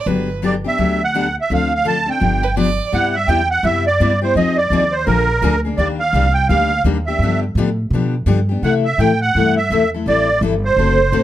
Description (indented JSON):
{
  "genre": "acoustic string swing (jazz manouche)",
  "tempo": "168 BPM",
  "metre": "4/4",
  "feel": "swing 62% on 8ths",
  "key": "unclear",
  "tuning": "A4 = 443 Hz",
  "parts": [
    { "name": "rich violin", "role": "second line", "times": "0.0-2.9 s", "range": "B4 to D5", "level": "-24 LUFS", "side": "right 6 dB", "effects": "none" },
    { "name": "picked steel-string acoustic guitar", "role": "accompaniment", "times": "0.1-11.2 s", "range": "C3 to A4", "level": "-19 LUFS", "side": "left 5 dB", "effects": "none" },
    { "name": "upright bass", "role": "bass", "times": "0.1-11.2 s", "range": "F#1 to C3", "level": "-19 LUFS", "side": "equal", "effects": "none" },
    { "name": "musette accordion", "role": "melody", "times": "0.4-11.2 s", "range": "Bb4 to A5", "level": "-17 LUFS", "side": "right 3 dB", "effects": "plate reverb" }
  ],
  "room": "moderate club reverb, RT60 0.5 s",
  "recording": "none",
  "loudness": "-14 LUFS",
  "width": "side -13 dB against mid",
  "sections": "0.0-2.9 A section; 2.9-11.2 B section",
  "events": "none",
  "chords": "0.1 Gmaj7; 1.5 Dm7; 2.2 G7; 2.9 Cmaj7; 4.4 Fm7; 5.1 Bb7; 5.8 Ebmaj7; 7.2 G7; 8.6 C6; 10.1 Am7"
}